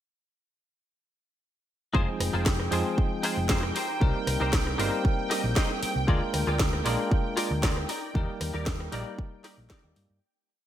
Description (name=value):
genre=nu-disco, nu disco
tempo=116 BPM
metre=4/4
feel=straight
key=F dorian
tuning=A4 = 440 Hz
part: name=bell-like tine electric piano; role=accompaniment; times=1.9-10.2 s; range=F3 to D5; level=-32 LUFS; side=equal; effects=medium stereo tremolo, sidechain pumping, ping-pong delay
part: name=lush unison pad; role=sustained chords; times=1.9-10.2 s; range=G5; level=-36 LUFS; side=right 2 dB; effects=chorus, sidechain pumping
part: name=direct-recorded clean electric guitar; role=riff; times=1.9-10.0 s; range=Eb4 to G5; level=-33 LUFS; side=left 2 dB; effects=ensemble chorus, ping-pong delay
part: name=hollow-body short-scale fingered electric bass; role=bass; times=1.9-10.2 s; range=F1 to G2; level=-30 LUFS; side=equal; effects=none
part: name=electronic kick drum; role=drums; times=1.9-9.8 s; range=none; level=-26 LUFS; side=equal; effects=none
part: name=house drum kit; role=drums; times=2.2-10.1 s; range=hi-hat, rim click, snare drum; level=-32 LUFS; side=right 1 dB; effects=gated reverb
room=light reverb, digital ambience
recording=bright 1980s-style digital production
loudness=-24 LUFS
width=side -11 dB against mid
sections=1.9-10.2 drop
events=drop 1.9-10.2; clean electric guitar fill 5.3-6.1; fade-out 7.5-10.2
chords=1.9 Fm7; 3.8 Cm7; 6.1 Bb7; 7.9 Ebmaj7